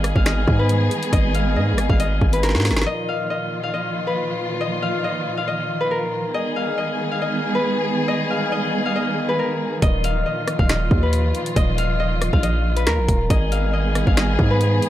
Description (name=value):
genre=hip hop, drill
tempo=138 BPM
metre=4/4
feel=half-time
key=unclear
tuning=A4 = 440 Hz
part: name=Celtic harp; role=melody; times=0.0-14.9 s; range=Bb4 to F5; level=-24 LUFS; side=left 2 dB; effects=none
part: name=dark symphonic string section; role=sustained chords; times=0.0-14.9 s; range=Bb2 to Ab4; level=-24 LUFS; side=right 2 dB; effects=none
part: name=distorted 808-style bass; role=bass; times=0.0-2.9, 9.8-14.8 s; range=Eb1 to Ab2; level=-20 LUFS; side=equal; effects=distortion
part: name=drill drum kit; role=drums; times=0.0-2.9, 9.8-14.9 s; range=finger snaps, hi-hat, kick drum, rim click, snare drum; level=-20 LUFS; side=equal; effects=none
room=small room ambience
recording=dry, gritty hardware recording, transformer saturation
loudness=-18 LUFS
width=side -13 dB against mid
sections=0.0-2.9 A section; 2.9-14.9 A section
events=drum fill 2.4-2.9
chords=0.0 Abm; 2.9 Ebsus2; 6.3 Abm; 9.8 Ebsus2; 13.3 Abm